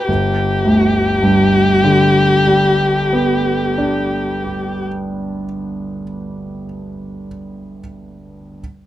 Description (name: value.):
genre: classical, impressionist duo for violin and grand piano.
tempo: 38 BPM.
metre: 4/4.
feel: rubato.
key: G major.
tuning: A4 = 435 Hz.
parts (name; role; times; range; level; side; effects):
rich violin; melody; 0.0-4.9 s; G4; -16 LUFS; left 2 dB; none.
clear grand piano; accompaniment; 0.0-8.6 s; G1 to C5; -17 LUFS; right 1 dB; none.
room: light reverb.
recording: close, detailed microphones.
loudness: -13 LUFS.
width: side -13 dB against mid.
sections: 0.1-6.3 A section.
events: none.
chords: 0.1 G.